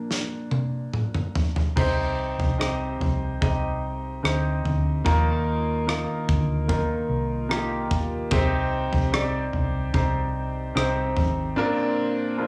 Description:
pop ballad; 74 BPM; 4/4; straight; A4 = 441 Hz
warm baby grand piano; accompaniment; 0.0-12.5 s; Bb2 to Eb5; -28 LUFS; equal; cassette tape
modern studio drum kit; drums; 0.1-11.4 s; crash cymbal, kick drum, rim click, snare drum, toms; -29 LUFS; equal; cassette tape
vintage muted fingered electric bass; bass; 1.8-11.5 s; Ab1 to Eb2; -29 LUFS; equal
moderate studio reverb, RT60 0.5 s; home recording on cassette, studio reverb; -25 LUFS; mono
0.0-1.8 A section; 1.8-12.5 B section
grand piano solo 0.0-1.8; drum fill 0.1-1.8
0.0 Bb; 1.8 Cm; 5.1 Ebsus2; 8.3 Cm; 11.6 Bbadd9

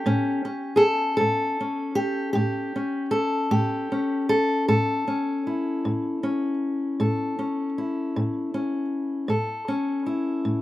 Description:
acoustic country blues, solo or duo; 52 BPM (dotted quarters); 12/8; straight; A major; A4 = 439 Hz
fingerpicked steel-string acoustic guitar; solo; 0.0-10.6 s; A2 to A4; -22 LUFS; left 1 dB
little or no reverb; recorded outdoors, with no room sound; -22 LUFS; side -15 dB against mid
0.0-10.6 A section
0.0 A

